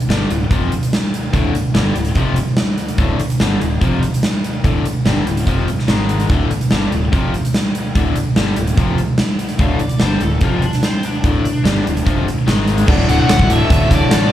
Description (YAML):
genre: classic rock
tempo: 145 BPM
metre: 4/4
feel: straight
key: unclear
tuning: A4 = 440 Hz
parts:
  - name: huge arena drum kit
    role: drums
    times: 0.0-14.2 s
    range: crash cymbal, hi-hat, kick drum, snare drum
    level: -16 LUFS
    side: equal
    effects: none
  - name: crunchy overdriven guitar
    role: riff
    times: 0.1-14.3 s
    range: D2 to G#3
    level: -24 LUFS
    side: right 7 dB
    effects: harmonic tremolo, slapback echo
  - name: overdriven electric guitar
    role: riff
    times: 0.1-14.3 s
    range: D2 to G#3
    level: -22 LUFS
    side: left 10 dB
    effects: slapback echo
  - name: fuzz fingered electric bass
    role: bass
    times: 0.1-14.3 s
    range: D1 to A1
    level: -19 LUFS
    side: equal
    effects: overdrive
  - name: biting overdriven guitar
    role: second line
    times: 9.6-12.2 s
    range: C4 to F5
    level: -24 LUFS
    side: left 1 dB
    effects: slapback echo
  - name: reed electric piano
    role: accompaniment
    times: 12.9-14.3 s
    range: A4 to F#5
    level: -28 LUFS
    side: right 3 dB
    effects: none
  - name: mellow tonewheel organ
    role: sustained chords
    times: 12.9-14.3 s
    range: none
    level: barely audible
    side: none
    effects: none
  - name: nasal lead guitar with a parked wah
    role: melody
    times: 13.1-14.3 s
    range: D5 to F#5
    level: -18 LUFS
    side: left 2 dB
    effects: overdrive
  - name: octave-fuzz lead guitar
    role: second line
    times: 13.1-14.3 s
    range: A4 to D5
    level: -28 LUFS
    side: right 5 dB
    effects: distortion, slapback echo, digital delay
room: little or no reverb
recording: live gig heard through the venue's PA, club reverb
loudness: -14 LUFS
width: side -12 dB against mid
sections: 0.0-12.9 A section; 12.9-14.3 B section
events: none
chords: 0.0 D5; 5.9 G#5; 6.3 D5; 12.5 G#5; 12.9 D